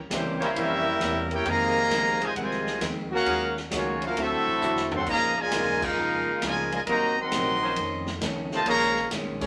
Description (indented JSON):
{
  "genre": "jazz, big band swing",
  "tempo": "133 BPM",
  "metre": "4/4",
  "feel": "swing 68% on 8ths",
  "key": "unclear",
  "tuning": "A4 = 441 Hz",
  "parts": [
    { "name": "upright bass", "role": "bass", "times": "0.0-9.5 s", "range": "Ab1 to F2", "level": "-43 LUFS", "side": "equal", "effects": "none" },
    { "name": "bright trumpet section", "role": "melody", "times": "0.1-9.1 s", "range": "Bb3 to C6", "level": "-28 LUFS", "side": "equal", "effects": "none" },
    { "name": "bright trombone section", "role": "second line", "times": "0.1-9.5 s", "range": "Bb2 to G4", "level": "-32 LUFS", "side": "equal", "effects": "none" },
    { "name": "archtop guitar, miked and amplified", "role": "accompaniment", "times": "0.1-9.4 s", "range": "F2 to Gb4", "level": "-36 LUFS", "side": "equal", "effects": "none" },
    { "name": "swinging big-band drum kit", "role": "drums", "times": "0.1-9.5 s", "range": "crash cymbal, hi-hat, kick drum, ride cymbal, snare drum, toms", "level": "-37 LUFS", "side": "equal", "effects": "none" },
    { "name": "bright trombone section", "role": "sustained chords", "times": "0.4-9.5 s", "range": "F3 to Db5", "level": "-36 LUFS", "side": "equal", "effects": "none" }
  ],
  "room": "wet studio reverb, RT60 0.6 s",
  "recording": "none",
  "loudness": "-26 LUFS",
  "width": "mono",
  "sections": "0.0-9.5 A section",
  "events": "drum fill 4.6-5.1; band accent 5.7",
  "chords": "0.0 C7b9; 1.5 Fm7; 3.3 Ebm11; 4.2 D9; 5.1 Db69; 6.9 Cm7b5; 7.8 F7b13; 8.7 Bbm11",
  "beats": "0.10 0.55 1.00 | 1.46 1.91 2.36 2.81 | 3.26 3.71 4.16 4.61 | 5.06 5.51 5.96 6.41 | 6.86 7.31 7.76 8.21 | 8.66 9.11"
}